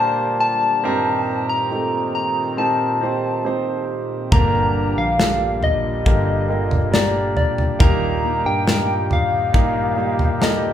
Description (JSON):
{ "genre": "pop ballad", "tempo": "69 BPM", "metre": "4/4", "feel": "straight", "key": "G minor", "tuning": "A4 = 440 Hz", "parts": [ { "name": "soft struck synth lead", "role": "melody", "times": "0.0-10.7 s", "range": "D5 to Bb5", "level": "-21 LUFS", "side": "left 2 dB", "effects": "chorus" }, { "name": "clear concert grand piano", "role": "accompaniment", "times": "0.0-10.7 s", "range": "G2 to C5", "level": "-23 LUFS", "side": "right 2 dB", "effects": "none" }, { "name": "sweeping resonant pad", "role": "sustained chords", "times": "0.0-10.7 s", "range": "Bb2 to G4", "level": "-28 LUFS", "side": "equal", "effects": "chorus" }, { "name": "nylon-string guitar", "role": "arpeggios", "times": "4.3-10.7 s", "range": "G2 to G4", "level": "-30 LUFS", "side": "left 8 dB", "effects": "none" }, { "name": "fretless electric bass", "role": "bass", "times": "4.3-10.7 s", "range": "G1 to G2", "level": "-25 LUFS", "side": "equal", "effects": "none" }, { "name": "modern studio drum kit", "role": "drums", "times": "4.3-10.6 s", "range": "kick drum, snare drum, toms", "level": "-19 LUFS", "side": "equal", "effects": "none" } ], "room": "moderate large studio reverb, RT60 0.8 s", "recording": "band playing live in one room", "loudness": "-17 LUFS", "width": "side -10 dB against mid", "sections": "0.0-10.7 A section", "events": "none", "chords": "0.0 Gm; 0.8 Cm7; 4.3 Gm; 7.8 Eb", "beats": "| 0.84 1.71 2.58 3.45 | 4.32 5.19 6.06 6.93 | 7.80 8.67 9.54 10.41" }